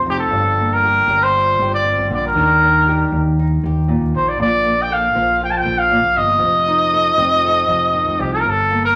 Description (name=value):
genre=highlife guitar band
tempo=118 BPM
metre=4/4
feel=straight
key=Bb major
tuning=A4 = 440 Hz
part: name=mellow trumpet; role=melody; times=0.0-9.0 s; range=G4 to A5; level=-17 LUFS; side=equal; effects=none
part: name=flamenco guitar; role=accompaniment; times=0.0-9.0 s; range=G2 to A4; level=-26 LUFS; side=equal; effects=none
part: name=fingered electric bass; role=bass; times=0.0-9.0 s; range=F1 to Eb2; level=-24 LUFS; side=equal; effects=none
room=wet large studio reverb, RT60 1.0 s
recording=vinyl crackle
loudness=-16 LUFS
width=mono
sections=0.0-9.0 A section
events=none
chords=0.3 Gm7; 2.3 Ebmaj7; 4.4 Bb5; 6.4 F7; 8.5 Gm